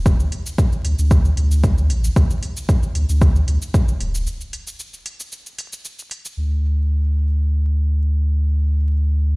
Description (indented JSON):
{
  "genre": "dub techno",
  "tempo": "114 BPM",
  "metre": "4/4",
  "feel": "swing 54% on 16ths",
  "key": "unclear",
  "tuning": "A4 = 440 Hz",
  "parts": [
    { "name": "warm sub bass", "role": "bass", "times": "0.0-9.4 s", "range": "D1 to D2", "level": "-17 LUFS", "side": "equal", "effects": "sidechain pumping" },
    { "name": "electronic cabasa and hi-hat", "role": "drums", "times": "0.1-9.4 s", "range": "none", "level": "-32 LUFS", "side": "equal", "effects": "low-pass filter on hats, low-pass filter on perc" },
    { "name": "electronic kick drum", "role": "drums", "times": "0.1-3.9 s", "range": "none", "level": "-15 LUFS", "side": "equal", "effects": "overdrive" }
  ],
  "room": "digital ambience",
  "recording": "played on a big sound system in a bare room, large studio reverb, vinyl crackle",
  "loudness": "-16 LUFS",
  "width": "side -28 dB against mid",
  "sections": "0.0-6.4 A section; 6.4-9.4 B section",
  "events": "break 4.3-6.4",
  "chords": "none"
}